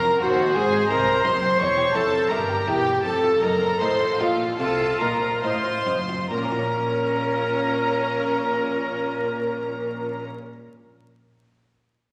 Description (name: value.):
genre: classical, baroque-style concerto movement with solo episodes.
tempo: 67-89 BPM.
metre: 4/4.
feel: straight.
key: Bb minor.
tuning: A4 = 441 Hz.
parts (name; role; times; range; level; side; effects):
mellow hollow tenor recorder; melody; 0.0-10.2 s; F4 to Eb5; -27 LUFS; equal; none.
warm chamber violin section; melody; 0.0-10.2 s; F5 to Db6; -31 LUFS; equal; none.
rich chamber violin section; second line; 0.0-10.2 s; F4 to Db5; -32 LUFS; equal; none.
buff-stop harpsichord; accompaniment; 0.0-10.5 s; Eb2 to E5; -35 LUFS; equal; none.
rich chamber viola section; accompaniment; 0.0-10.3 s; Db4 to C5; -29 LUFS; equal; none.
rich chamber cello section; bass; 0.0-10.2 s; Eb2 to C3; -34 LUFS; equal; none.
warm chamber double bass section; bass; 0.0-10.2 s; E1 to Eb2; -39 LUFS; equal; none.
room: wet scoring stage reverb, RT60 1.7 s.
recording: vinyl crackle.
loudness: -23 LUFS.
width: mono.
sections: 0.0-6.3 A section; 6.3-9.9 B section.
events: slowing down 0.0-6.3.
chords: 0.2 Cdim; 1.6 Edim; 3.0 F7; 6.3 Bbm.